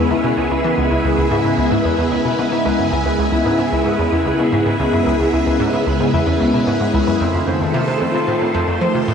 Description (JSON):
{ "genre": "ambient, sequencer-driven space music", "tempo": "112 BPM", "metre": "4/4", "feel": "straight", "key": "unclear", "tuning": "A4 = 437 Hz", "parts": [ { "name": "phased string machine", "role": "sustained chords", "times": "0.0-9.1 s", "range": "C#3 to C5", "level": "-18 LUFS", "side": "equal", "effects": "ensemble chorus, phaser" }, { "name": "concert harp", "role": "arpeggios", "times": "0.0-9.1 s", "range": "B3 to C5", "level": "-20 LUFS", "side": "left 3 dB", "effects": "auto-pan, ping-pong delay" }, { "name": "analog pluck", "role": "riff", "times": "0.0-9.1 s", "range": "C#2 to F3", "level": "-20 LUFS", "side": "right 1 dB", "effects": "chorus, ping-pong delay" } ], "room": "wet shimmer reverb, RT60 7.0 s", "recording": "none", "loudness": "-15 LUFS", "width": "side -7 dB against mid", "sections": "0.0-9.1 A section", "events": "none", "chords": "0.0 C#m7; 7.2 F7" }